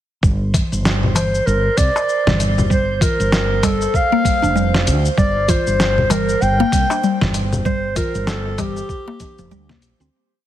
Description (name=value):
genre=organic downtempo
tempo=97 BPM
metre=4/4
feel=swing 58% on 16ths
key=G minor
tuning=A4 = 440 Hz
part: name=woody fretless electric bass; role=bass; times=0.2-10.1 s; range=F1 to D2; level=-20 LUFS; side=equal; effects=sidechain pumping
part: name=dusty soul sampler-style drum kit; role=drums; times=0.2-10.1 s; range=congas, hi-hat, shaker, snare drum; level=-22 LUFS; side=left 1 dB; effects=none
part: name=electronic kick drum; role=drums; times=0.2-9.3 s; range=none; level=-19 LUFS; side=equal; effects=none
part: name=drifting glass-harmonics texture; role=texture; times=0.7-10.1 s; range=C5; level=-30 LUFS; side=right 7 dB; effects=chorus, built-in reverb
part: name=darbuka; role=percussion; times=0.5-9.8 s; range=none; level=-25 LUFS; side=left 2 dB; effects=none
part: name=mellow clarinet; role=melody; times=1.2-9.8 s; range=G4 to G5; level=-20 LUFS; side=equal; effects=ping-pong delay
part: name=mallet-like synth pluck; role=arpeggios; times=2.7-10.1 s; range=F3 to F4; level=-22 LUFS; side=left 1 dB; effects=chorus, phaser, ping-pong delay
room=light reverb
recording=heavily compressed radio sound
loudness=-15 LUFS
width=side -12 dB against mid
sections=0.2-10.1 groove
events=fade-out 6.8-10.1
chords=0.2 G7(no3)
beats=| 0.23 0.85 1.47 2.09 | 2.71 3.33 3.94 4.56 | 5.18 5.80 6.42 7.04 | 7.66 8.27 8.89 9.51